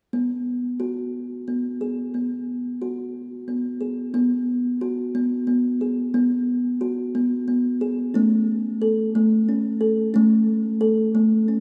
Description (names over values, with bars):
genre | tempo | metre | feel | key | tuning
world meditative | 60 BPM (dotted quarters) | 6/8 | straight | unclear | A4 = 440 Hz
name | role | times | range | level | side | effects
kalimba | arpeggios | 0.1-11.6 s | A3 to A4 | -22 LUFS | equal | none
room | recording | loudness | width
wet church reverb, RT60 2.9 s | none | -23 LUFS | mono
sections
0.1-4.1 A section; 4.1-11.6 B section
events
none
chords
0.1 B5; 8.1 A